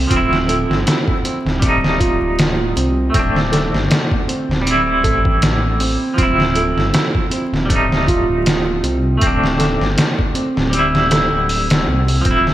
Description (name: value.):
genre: trip hop.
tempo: 79 BPM.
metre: 4/4.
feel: swing 56% on 16ths.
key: D minor.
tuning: A4 = 440 Hz.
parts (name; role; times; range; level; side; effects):
clean electric guitar; accompaniment; 0.0-12.5 s; F3 to E4; -19 LUFS; equal; tremolo, tape echo.
felt-muted upright piano; arpeggios; 0.0-12.5 s; C4 to A4; -22 LUFS; right 3 dB; tape echo.
dark detuned saw bass; bass; 0.0-12.5 s; D1 to C2; -20 LUFS; equal; none.
trip hop sampler-style drum kit; drums; 0.1-12.5 s; hi-hat, kick drum, snare drum; -18 LUFS; equal; overdrive, studio reverb, gated reverb.
room: moderate lush hall reverb, RT60 2.7 s.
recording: bright 1980s-style digital production, vinyl crackle.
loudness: -14 LUFS.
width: side -13 dB against mid.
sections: 0.0-12.5 A section.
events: none.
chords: 0.1 Dm7; 1.6 F13/D; 3.1 D7sus4; 4.7 Am7/D; 6.2 Dm7; 7.7 F13/D; 9.2 D7sus4; 10.7 Am7/D.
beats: | 0.11 0.86 1.62 2.38 | 3.14 3.90 4.66 5.42 | 6.18 6.94 7.70 8.46 | 9.22 9.98 10.74 11.50 | 12.26.